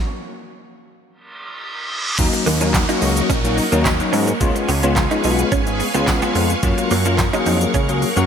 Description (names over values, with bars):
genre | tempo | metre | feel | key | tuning
dance-pop | 108 BPM | 4/4 | straight | Eb minor | A4 = 441 Hz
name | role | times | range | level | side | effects
reverse cymbal and downlifter | sound effects | 1.3-6.6 s | none | -26 LUFS | right 1 dB | none
bell-like tine electric piano | accompaniment | 2.2-8.3 s | Gb3 to Ab4 | -21 LUFS | left 4 dB | ensemble chorus, sidechain pumping
string machine, cellos | sustained chords | 2.2-8.3 s | Bb4 to Db6 | -24 LUFS | right 1 dB | ensemble chorus, sidechain pumping
fat analog bass | bass | 2.2-8.3 s | Ab1 to Ab2 | -20 LUFS | right 1 dB | sidechain pumping
pop drum kit | drums | 2.2-8.3 s | crash cymbal, handclaps, hi-hat, kick drum, shaker, snare drum | -21 LUFS | right 1 dB | gated reverb
direct-recorded clean electric guitar | riff | 2.3-8.3 s | Bb3 to Eb4 | -25 LUFS | right 4 dB | ensemble chorus
tambourine | percussion | 2.7-7.3 s | none | -37 LUFS | right 9 dB | none
room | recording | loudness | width
moderate lush hall reverb, RT60 2.7 s | bright 1980s-style digital production | -15 LUFS | side -8 dB against mid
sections
0.0-2.2 A section; 2.2-8.3 B section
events
stop 0.0-2.2; reverse cymbal 1.3-2.2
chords
0.0 N.C.; 2.2 Ebm7; 4.4 Db7; 6.6 Gbmaj7